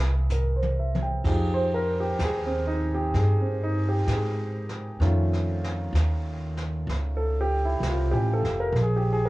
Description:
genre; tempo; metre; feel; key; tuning
jazz ballad; 64 BPM; 4/4; swing 66% on 8ths; F minor; A4 = 443 Hz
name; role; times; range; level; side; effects
clear upright piano; accompaniment; 0.0-9.3 s; Eb3 to G5; -28 LUFS; right 1 dB; cassette tape
upright bass; bass; 0.0-9.3 s; F1 to Ab2; -25 LUFS; equal; none
jazz brush drum kit; drums; 0.3-9.3 s; brushed snare drum, hi-hat, kick drum, ride cymbal, snare drum, toms; -36 LUFS; equal; none
room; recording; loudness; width
light reverb; home recording on cassette, small room ambience; -23 LUFS; side -18 dB against mid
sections
0.0-1.2 A section; 1.2-9.3 B section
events
drum fill 0.0-1.2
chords
0.0 C7b13; 1.2 Fm9; 5.0 F7b13; 8.7 Bb7(no3)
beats
0.30 | 1.25 2.19 3.13 4.06 | 5.00 5.94 6.88 7.81 | 8.75

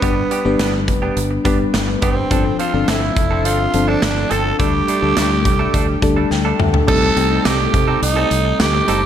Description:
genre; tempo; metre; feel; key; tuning
1980s-style pop; 105 BPM; 4/4; straight; unclear; A4 = 440 Hz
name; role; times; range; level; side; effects
growling tenor saxophone; melody; 0.0-9.1 s; B3 to A4; -20 LUFS; right 3 dB; shimmer reverb
FM electric piano; accompaniment; 0.0-9.1 s; F3 to A5; -20 LUFS; left 4 dB; chorus, shimmer reverb
direct-recorded clean electric guitar; riff; 0.0-9.1 s; F3 to A4; -25 LUFS; right 5 dB; lush chorus, shimmer reverb, ping-pong delay
fingered electric bass; bass; 0.0-9.1 s; F1 to C3; -21 LUFS; equal; none
big rock drum kit; drums; 0.0-9.0 s; crash cymbal, hi-hat, kick drum, snare drum, tambourine, toms; -19 LUFS; equal; gated reverb
room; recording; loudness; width
moderate concert hall reverb, RT60 2.1 s; none; -14 LUFS; side -9 dB against mid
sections
0.0-6.9 A section; 6.9-9.1 B section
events
FM electric piano fill 5.7-6.9; drum fill 6.3-6.9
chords
0.0 G; 2.3 F6; 4.6 Dsus4; 6.9 Cm6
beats
| 0.03 0.60 1.17 1.74 | 2.31 2.88 3.45 4.03 | 4.60 5.17 5.74 6.31 | 6.88 7.45 8.03 8.60

